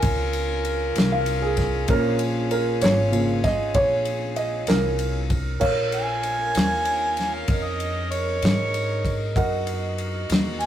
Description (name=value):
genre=slow blues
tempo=64 BPM (dotted quarters)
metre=12/8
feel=straight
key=Bb minor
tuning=A4 = 440 Hz
part: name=warm upright piano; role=accompaniment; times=0.0-10.7 s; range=Db3 to Ab5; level=-25 LUFS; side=right 2 dB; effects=none
part: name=warm horn section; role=sustained chords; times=0.0-10.7 s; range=Db4 to Bb4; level=-30 LUFS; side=equal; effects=none
part: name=upright bass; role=bass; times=0.0-10.7 s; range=Ab1 to Ab2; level=-28 LUFS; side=equal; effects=none
part: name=natural country drum kit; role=drums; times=0.0-10.7 s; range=crash cymbal, kick drum, ride cymbal, snare drum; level=-25 LUFS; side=left 1 dB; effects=none
part: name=clear harmonica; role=second line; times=5.9-10.7 s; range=Db5 to Ab5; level=-25 LUFS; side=right 1 dB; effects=overdrive
room=moderate small room reverb, RT60 0.5 s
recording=rough rehearsal-room recording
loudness=-20 LUFS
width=side -11 dB against mid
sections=0.0-5.6 A section; 5.6-10.7 A section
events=upright piano solo 0.0-5.6; harmonica solo 5.6-10.7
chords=0.0 Bbm; 9.4 Ebm